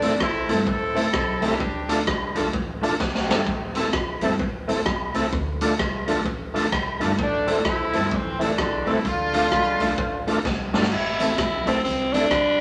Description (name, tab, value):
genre	ska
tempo	129 BPM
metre	4/4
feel	swing 62% on 8ths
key	A minor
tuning	A4 = 440 Hz
part	clear horn section	melody	0.0-2.3, 7.2-10.5 s	E3 to A4	-27 LUFS	equal	none
part	electric guitar at the edge of break-up	accompaniment	0.0-12.3 s	A3 to A4	-32 LUFS	equal	none
part	overdriven tonewheel organ	stabs	0.0-12.3 s	A3 to A4	-28 LUFS	equal	chorus vibrato, slow rotary speaker
part	upright bass	bass	0.0-12.6 s	G1 to D2	-34 LUFS	equal	none
part	raw garage drum kit	drums	0.0-12.4 s	crash cymbal, hi-hat, kick drum, rim click, snare drum	-28 LUFS	equal	none
part	raspy alto saxophone	melody	10.9-12.6 s	C4 to E4	-24 LUFS	equal	none
room	wet studio reverb, RT60 0.5 s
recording	none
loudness	-23 LUFS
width	mono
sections	0.0-10.9 A section; 10.9-12.6 B section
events	drum fill 3.0-3.5, 10.5-10.9; alto saxophone solo 10.9-12.6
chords	0.0 Am; 1.6 Dm; 3.5 Am; 5.3 Dm; 7.2 Am; 9.1 Dm; 10.9 Am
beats	0.20 0.67 1.14 | 1.61 2.07 2.54 3.00 | 3.47 3.94 4.40 4.87 | 5.33 5.80 6.26 6.73 | 7.20 7.66 8.13 8.59 | 9.06 9.52 9.99 10.45 | 10.92 11.38 11.85 12.31